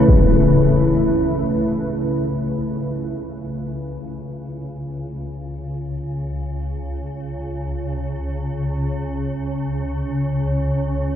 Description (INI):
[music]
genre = ambient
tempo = free time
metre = none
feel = none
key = unclear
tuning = A4 = 440 Hz
[part]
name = swarming drone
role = drone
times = 0.0-11.2 s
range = C#2 to C#3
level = -24 LUFS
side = equal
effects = built-in reverb
[sound]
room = wet huge ambient reverb, RT60 8.6 s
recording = dreamy mix soaked in reverb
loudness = -20 LUFS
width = side -9 dB against mid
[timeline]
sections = 0.1-11.2 A section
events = fade-in on synth drone 0.1-11.2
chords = none